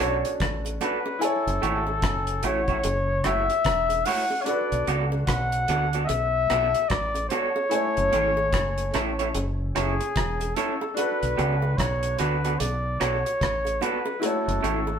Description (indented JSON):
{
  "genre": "lovers rock reggae",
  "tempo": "74 BPM",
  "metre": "4/4",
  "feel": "swing 62% on 16ths",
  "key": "B dorian",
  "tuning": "A4 = 439 Hz",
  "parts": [
    { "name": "warm flugelhorn", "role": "melody", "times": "0.0-15.0 s", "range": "G#4 to F#5", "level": "-26 LUFS", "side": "left 2 dB", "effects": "none" },
    { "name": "clear baby grand piano", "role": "accompaniment", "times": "0.0-15.0 s", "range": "A3 to G#5", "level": "-31 LUFS", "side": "left 1 dB", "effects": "none" },
    { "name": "electric guitar through a small old amp", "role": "stabs", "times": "0.0-14.8 s", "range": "A3 to D5", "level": "-28 LUFS", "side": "right 4 dB", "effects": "none" },
    { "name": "deep dub fingered electric bass", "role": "bass", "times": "0.0-15.0 s", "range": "E1 to D2", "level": "-28 LUFS", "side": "equal", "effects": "none" },
    { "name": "deep reggae drum kit", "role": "drums", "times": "0.0-14.9 s", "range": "hi-hat, kick drum, rim click", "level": "-29 LUFS", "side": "equal", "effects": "none" },
    { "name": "bongos", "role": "percussion", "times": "0.6-15.0 s", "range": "none", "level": "-37 LUFS", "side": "right 3 dB", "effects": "tape echo" }
  ],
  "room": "wet studio reverb, RT60 0.7 s",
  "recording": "band playing live in one room",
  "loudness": "-22 LUFS",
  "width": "side -7 dB against mid",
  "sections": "0.0-15.0 A section",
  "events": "none",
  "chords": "0.0 Bm7; 1.2 F#m7; 4.5 Bm7; 7.7 F#m7; 11.0 Bm7; 14.2 F#m7"
}